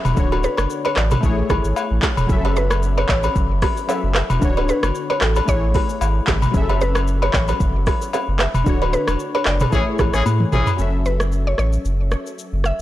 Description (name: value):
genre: afrobeats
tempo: 113 BPM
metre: 4/4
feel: swing 55% on 16ths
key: F# minor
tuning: A4 = 439 Hz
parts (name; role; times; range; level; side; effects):
- mallet-like synth pluck; melody; 0.0-12.8 s; A4 to E5; -26 LUFS; equal; chorus, tape echo
- warm analog keys; accompaniment; 0.0-12.8 s; D3 to E5; -26 LUFS; left 3 dB; chorus
- warm sub bass; bass; 0.0-12.8 s; D1 to A2; -20 LUFS; equal; none
- agogo bells and woodblock; percussion; 0.0-10.8 s; none; -26 LUFS; left 7 dB; none
- afro-pop drum kit; drums; 0.1-12.8 s; handclaps, hi-hat, kick drum, rim click, shaker, toms; -21 LUFS; equal; vintage 12-bit sampler grit
- kalimba; riff; 0.3-10.6 s; E4 to E5; -28 LUFS; right 6 dB; tape echo
- clear horn section; second line; 9.7-10.7 s; E3 to G#4; -24 LUFS; left 4 dB; none
room: little or no reverb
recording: blown-out, overdriven recording, overdrive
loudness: -16 LUFS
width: side -14 dB against mid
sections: 0.0-10.8 A section; 10.8-12.8 B section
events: band accent 8.7-10.8; drum fill 10.3-10.8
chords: 0.2 Dmaj7; 1.2 Amaj7; 2.3 F#m7; 4.4 Dmaj7; 5.5 Amaj7; 6.5 F#m7; 8.7 Dmaj7; 9.7 Amaj7; 10.8 F#m7